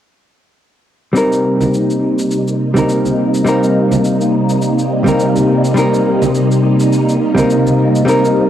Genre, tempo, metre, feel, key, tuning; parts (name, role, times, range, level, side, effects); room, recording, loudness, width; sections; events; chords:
sunset chillout; 104 BPM; 4/4; swing 57% on 16ths; C minor; A4 = 440 Hz
hollow-body jazz guitar; accompaniment; 1.1-8.5 s; G3 to Bb4; -14 LUFS; equal; auto-pan, low-pass filter, cassette tape, tape echo, plate reverb
soft string machine; sustained chords; 1.2-8.5 s; C3 to Eb4; -14 LUFS; equal; phaser, ensemble chorus, cassette tape
cabasa; drums; 1.2-8.3 s; -31 LUFS; left 1 dB; studio reverb, cassette tape
congas; percussion; 1.6-7.8 s; -21 LUFS; right 5 dB
wet booth ambience, RT60 0.3 s; home recording on cassette; -11 LUFS; side -10 dB against mid
1.2-8.5 A section
1.2 Cm7